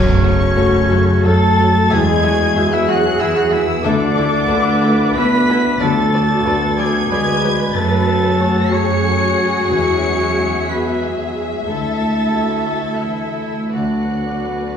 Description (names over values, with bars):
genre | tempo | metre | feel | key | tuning
cinematic | 91 BPM | 3/4 | rubato | F# minor | A4 = 439 Hz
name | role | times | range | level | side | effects
muted studio violin section | melody | 0.0-14.8 s | C#6 to C#7 | -24 LUFS | left 3 dB | none
mellow concert flute | second line | 0.0-14.8 s | C#5 to C#6 | -23 LUFS | left 1 dB | none
warm oboe | second line | 0.0-14.8 s | C#4 to C#5 | -25 LUFS | right 2 dB | none
warm grand piano | accompaniment | 0.0-14.8 s | D2 to E5 | -22 LUFS | left 1 dB | none
mellow French horn section | sustained chords | 0.0-14.8 s | C#3 to C#4 | -22 LUFS | left 1 dB | none
concert harp | arpeggios | 0.0-14.8 s | E2 to E6 | -24 LUFS | left 6 dB | none
muted studio double bass section | bass | 0.0-14.8 s | D2 to F#2 | -21 LUFS | right 3 dB | none
muted studio violin section | second line | 0.2-14.8 s | G#4 to E5 | -26 LUFS | left 2 dB | none
muted studio viola section | accompaniment | 0.2-14.8 s | F#3 to F#4 | -24 LUFS | equal | none
muted studio cello section | bass | 0.6-14.8 s | D4 to B4 | -25 LUFS | right 2 dB | none
room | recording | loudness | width
wet recital hall reverb, RT60 1.2 s | heard from further back in the room | -14 LUFS | side -8 dB against mid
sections
0.0-14.8 A section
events
none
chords
0.0 F#m; 1.9 Eadd9; 3.9 Dsus2; 5.8 Bm7/D; 7.7 F#madd9; 9.7 Eadd9; 11.7 Dsus2; 13.7 Bm7/D